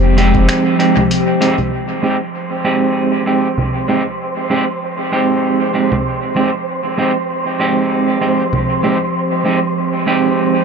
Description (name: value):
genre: ambient dub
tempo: 97 BPM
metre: 4/4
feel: swing 55% on 16ths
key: F minor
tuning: A4 = 440 Hz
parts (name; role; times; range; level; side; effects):
- warbly tape-like pad; sustained chords; 0.0-10.6 s; F3 to Eb5; -20 LUFS; right 1 dB; chorus, built-in reverb
- soft dub sub bass; bass; 0.0-0.5 s; F1; -12 LUFS; left 1 dB; none
- clean electric guitar; stabs; 0.2-10.6 s; Ab3 to G4; -15 LUFS; right 2 dB; harmonic tremolo, low-pass filter, dub echo
- lo-fi sampler-style drum kit; drums; 0.2-8.7 s; congas, finger snaps, hi-hat; -21 LUFS; right 1 dB; low-pass filter on hats, low-pass filter on perc, low-pass filter on snare, dub echo
- electronic kick drum; drums; 0.3-0.5 s; none; -19 LUFS; equal; none
- wind-like tuned noise texture; texture; 2.2-10.6 s; C5; -22 LUFS; right 2 dB; built-in reverb
room: light reverb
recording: echo-heavy mix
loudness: -13 LUFS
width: side -6 dB against mid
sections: 0.0-1.7 A section; 1.7-10.6 B section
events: break 0.5-1.7; filter sweep on drum 1.7-10.6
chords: 0.0 Fm7